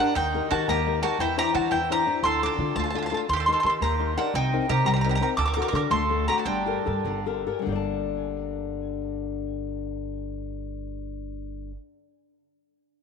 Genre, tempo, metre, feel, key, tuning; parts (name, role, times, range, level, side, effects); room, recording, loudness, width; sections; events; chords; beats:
italian folk, Italian serenade; 91-117 BPM (dotted quarters); 6/8; rubato; G harmonic minor; A4 = 440 Hz
bowl-back mandolin; melody; 0.0-7.2 s; F#5 to D6; -26 LUFS; equal; tape echo
bowl-back mandolin; second line; 0.0-7.2 s; D4 to Bb4; -30 LUFS; right 11 dB
flamenco guitar; accompaniment; 0.0-11.8 s; G2 to A5; -29 LUFS; left 12 dB
upright bass; bass; 0.2-11.7 s; G1 to E3; -31 LUFS; right 2 dB
moderate plate reverb, RT60 3.0 s; 1960s-style stereo with parts hard left and right; -23 LUFS; side -6 dB against mid
0.0-7.7 A section; 7.7-10.3 B section
slowing down 5.4-7.7
0.2 Eb; 1.2 Cadd9/E; 2.2 Dm; 3.3 Eb; 4.3 Cm7; 5.4 D; 6.5 Gmadd9
| 0.15 0.67 | 1.19 1.71 | 2.23 2.76 | 3.29 3.81 | 4.34 4.86 | 5.38 5.91 | 6.46 7.05 | 7.68 8.33 | 8.98 9.63